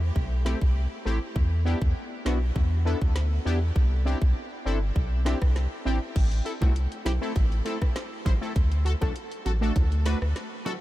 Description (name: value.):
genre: dancehall.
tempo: 100 BPM.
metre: 4/4.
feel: straight.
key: unclear.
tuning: A4 = 441 Hz.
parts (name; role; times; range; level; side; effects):
warm sub bass; bass; 0.0-10.3 s; G1 to E2; -25 LUFS; equal; none.
island pop drum kit; drums; 0.2-10.8 s; crash cymbal, hi-hat, kick drum, rim click, snare drum; -27 LUFS; equal; none.
synth brass stab; accompaniment; 0.4-10.7 s; A3 to C5; -31 LUFS; equal; chorus, sidechain pumping.
bongos; percussion; 6.6-10.8 s; none; -40 LUFS; right 2 dB; none.
room: light reverb.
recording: none.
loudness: -23 LUFS.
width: side -16 dB against mid.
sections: 0.0-6.2 A section; 6.2-10.8 B section.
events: none.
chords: 0.0 Am7; 1.4 E7(no3); 3.8 Cadd9; 6.2 Am; 8.6 D.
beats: 0.16 0.76 | 1.36 1.96 2.56 3.16 | 3.76 4.36 4.96 5.56 | 6.16 6.76 7.36 7.96 | 8.56 9.16 9.76 10.36.